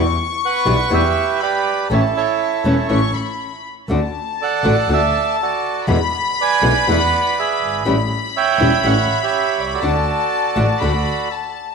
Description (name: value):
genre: tango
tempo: 121 BPM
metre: 4/4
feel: rubato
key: D major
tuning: A4 = 440 Hz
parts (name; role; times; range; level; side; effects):
- warm studio violin section; second line; 0.0-11.7 s; A5 to C#6; -22 LUFS; left 7 dB; none
- flamenco guitar; accompaniment; 0.0-10.9 s; B2 to F#4; -21 LUFS; left 2 dB; none
- clear double bass; bass; 0.0-11.0 s; E1 to E2; -20 LUFS; left 1 dB; none
- bandoneon; melody; 0.5-11.3 s; E4 to G#5; -19 LUFS; right 8 dB; none
room: wet echo chamber reverb, RT60 1.7 s, studio ambience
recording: 1960s-style stereo with parts hard left and right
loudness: -15 LUFS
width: side -5 dB against mid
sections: 0.0-11.7 A section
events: none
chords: 0.0 Em; 1.9 A; 3.9 D; 5.9 E7; 7.9 A7; 9.8 D